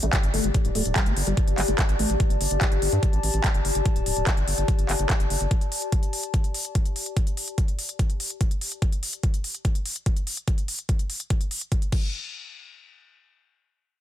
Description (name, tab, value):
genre	psychedelic trance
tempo	145 BPM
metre	4/4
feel	straight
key	unclear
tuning	A4 = 439 Hz
part	liquid acid bass	riff	0.0-2.1 s	G3 to Bb3	-30 LUFS	moving between left 4 dB and right 2 dB	chorus, auto-pan, sidechain pumping, digital delay
part	round analog bass	bass	0.0-5.5 s	D1 to G2	-26 LUFS	equal	none
part	techno drum kit	drums	0.0-12.0 s	crash cymbal, handclaps, hi-hat	-29 LUFS	equal	overdrive
part	impact	sound effects	0.0-0.5 s	none	barely audible	none	none
part	warbly tape-like pad	texture	0.0-8.8 s	G4 to A5	-30 LUFS	left 3 dB	chorus, built-in reverb, sidechain pumping
part	electronic kick drum	drums	0.1-12.0 s	none	-23 LUFS	equal	overdrive
room	digital ambience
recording	dense, heavily limited modern master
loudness	-22 LUFS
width	side -12 dB against mid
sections	0.0-12.1 A section; 12.1-14.0 B section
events	impact 0.0-0.5; filter sweep on analog synth bass 0.0-5.5; filter sweep on acid bass 0.0-2.2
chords	0.0 G5; 11.9 N.C.